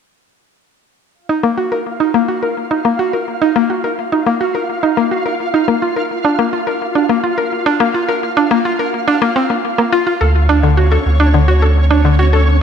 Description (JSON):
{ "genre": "IDM", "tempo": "106 BPM", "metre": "4/4", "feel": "straight", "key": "Eb minor", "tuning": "A4 = 440 Hz", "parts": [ { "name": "flickering grainy texture", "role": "texture", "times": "1.6-12.6 s", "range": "C#4 to F5", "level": "-21 LUFS", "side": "right 1 dB", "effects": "built-in reverb" }, { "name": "mallet-like synth pluck", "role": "arpeggios", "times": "1.3-12.4 s", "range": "D3 to Bb4", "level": "-14 LUFS", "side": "left 1 dB", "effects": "chorus, ping-pong delay" }, { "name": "warm sub bass", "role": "bass", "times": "10.2-12.6 s", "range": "D2", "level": "-11 LUFS", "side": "equal", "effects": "none" } ], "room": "moderate lush hall reverb, RT60 2.3 s", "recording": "none", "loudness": "-12 LUFS", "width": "side -7 dB against mid", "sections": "1.2-12.6 A section", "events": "filter sweep on synth arpeggio sound 1.2-12.6", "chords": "1.2 Ebm; 5.7 Bb5; 10.2 Dmaj7" }